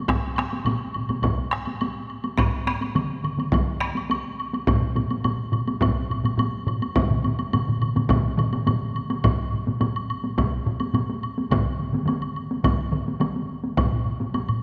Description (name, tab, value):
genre	japanese traditional, taiko drum ensemble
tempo	105 BPM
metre	4/4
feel	straight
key	none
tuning	none
part	solo taiko drums	percussion	0.1-14.5 s	none	-31 LUFS	equal	none
part	taiko ensemble	percussion	0.1-14.6 s	none	-28 LUFS	equal	none
part	taiko ensemble	percussion	0.1-13.9 s	none	-29 LUFS	equal	none
part	woodblock	percussion	0.1-14.6 s	none	-34 LUFS	equal	none
part	taiko ensemble	percussion	2.4-13.3 s	none	-31 LUFS	equal	none
room	wet concert hall reverb, RT60 2.1 s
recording	none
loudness	-25 LUFS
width	mono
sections	0.0-9.2 A section; 9.2-14.6 B section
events	none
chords	none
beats	| 0.10 0.67 1.25 1.82 | 2.39 2.96 3.54 4.11 | 4.68 5.25 5.82 6.39 | 6.96 7.53 8.10 8.67 | 9.24 9.81 10.38 10.95 | 11.51 12.08 12.65 13.21 | 13.78 14.35